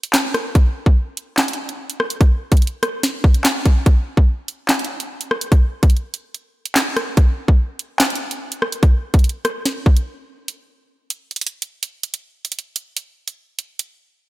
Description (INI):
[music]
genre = hip hop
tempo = 145 BPM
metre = 4/4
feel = half-time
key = none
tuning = none
[part]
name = drill drum kit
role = drums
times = 0.0-13.9 s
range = handclaps, hi-hat, kick drum, rim click, snare drum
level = -15 LUFS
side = equal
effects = none
[sound]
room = light reverb, digital ambience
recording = none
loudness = -16 LUFS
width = side -17 dB against mid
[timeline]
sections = 0.0-10.5 A section; 10.5-14.3 B section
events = break 10.1-10.5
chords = none